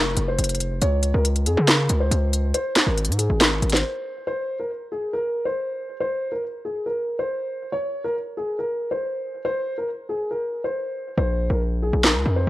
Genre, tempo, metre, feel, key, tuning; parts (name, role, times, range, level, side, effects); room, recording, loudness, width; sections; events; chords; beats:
hip hop, trap; 139 BPM; 4/4; half-time; Bb minor; A4 = 444 Hz
dark concert grand piano; melody; 0.0-12.5 s; Ab4 to Db5; -26 LUFS; equal; low-pass filter, tape echo
distorted 808-style bass; bass; 0.0-3.8, 11.2-12.5 s; F1 to Db3; -21 LUFS; equal; distortion
trap drum kit; drums; 0.2-3.8, 12.0-12.1 s; handclaps, hi-hat, snare drum; -20 LUFS; equal; cassette tape
light reverb, digital ambience; home recording on cassette; -21 LUFS; side -16 dB against mid
0.0-4.3 A section; 4.3-11.2 B section; 11.2-12.5 C section
break 3.8-4.3; hi-hats muted 11.2-12.5
0.0 F5; 0.8 Dbmaj7(no3); 2.5 Abadd9; 4.3 N.C.; 11.2 Bbsus2
0.39 | 0.82 1.25 1.68 2.11 | 2.54 2.98 3.41 3.84 | 4.27 4.70 5.13 5.57 | 6.00 6.43 6.86 7.29 | 7.72 8.15 8.59 9.02 | 9.45 9.88 10.31 10.74 | 11.18 11.61 12.04 12.47